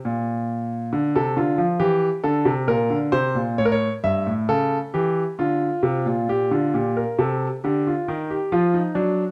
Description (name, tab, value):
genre	classical, baroque-style two-part invention for grand piano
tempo	67 BPM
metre	3/4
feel	straight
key	G minor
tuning	A4 = 438 Hz
part	clear concert grand piano	solo	0.1-9.2 s	G2 to E5	-22 LUFS	equal	none
room	moderate stone room reverb, RT60 1.2 s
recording	close, detailed microphones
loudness	-22 LUFS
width	mono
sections	0.0-6.3 A section; 6.3-9.3 B section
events	none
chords	0.0 N.C.; 0.9 Dm; 2.7 Bbadd9; 3.6 A7; 5.4 Dm; 6.3 Gm/Bb; 8.1 Ebadd9